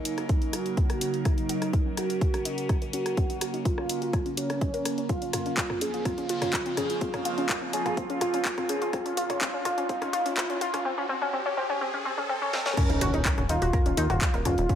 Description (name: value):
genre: melodic techno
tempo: 125 BPM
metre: 4/4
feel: straight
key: Eb dorian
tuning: A4 = 445 Hz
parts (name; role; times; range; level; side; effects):
- wide unison lead; melody; 0.0-14.8 s; Db4 to Ab4; -31 LUFS; right 1 dB; digital delay
- evolving wavetable pad; sustained chords; 0.0-10.8 s; Eb2 to Bb4; -34 LUFS; right 1 dB; phaser, built-in reverb, sidechain pumping
- warbly dusty pluck; arpeggios; 0.1-14.7 s; C4 to Eb5; -32 LUFS; left 2 dB; chorus, cassette tape, sidechain pumping, digital delay
- house drum kit; drums; 0.1-14.8 s; crash cymbal, handclaps, hi-hat, rim click, snare drum, toms; -32 LUFS; left 1 dB; sidechain pumping on hats, small room reverb, sidechain pumping on toms, sidechain pumping on cymbals
- electronic kick drum; drums; 0.3-14.8 s; none; -27 LUFS; equal; small room reverb
- riser and impact; sound effects; 7.6-14.7 s; none; -35 LUFS; equal; none
- plucky analog bass; bass; 12.9-14.7 s; Eb1 to Eb2; -28 LUFS; equal; sidechain pumping
room: light reverb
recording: high-pass filter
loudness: -25 LUFS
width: side -9 dB against mid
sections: 0.0-12.8 A section; 12.8-14.8 B section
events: build-up 0.0-12.8; filter sweep on synth arpeggio sound 0.0-12.8; filter sweep on analog synth lead 0.0-12.8; filter sweep 0.0-12.8; riser 7.6-12.8; drum fill 12.5; drop 12.8-14.8; impact 12.8-14.7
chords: 0.0 Ebm7; 5.1 Bbmadd9/Eb; 12.8 Eb7(no3)